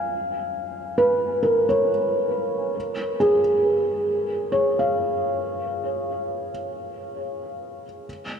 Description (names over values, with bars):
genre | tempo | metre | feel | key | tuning
ambient | free time | none | none | unclear | A4 = 436 Hz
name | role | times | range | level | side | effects
felt-muted upright piano | solo | 0.0-8.1 s | Ab4 to Ab5 | -21 LUFS | equal | diffuse ambient delay
room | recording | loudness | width
wet huge ambient reverb, RT60 8.2 s | dark, warm production, tape saturation | -21 LUFS | side -7 dB against mid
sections
0.0-2.8 A section; 2.8-8.4 B section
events
none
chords
0.0 Db7(no3); 2.8 Db/Ab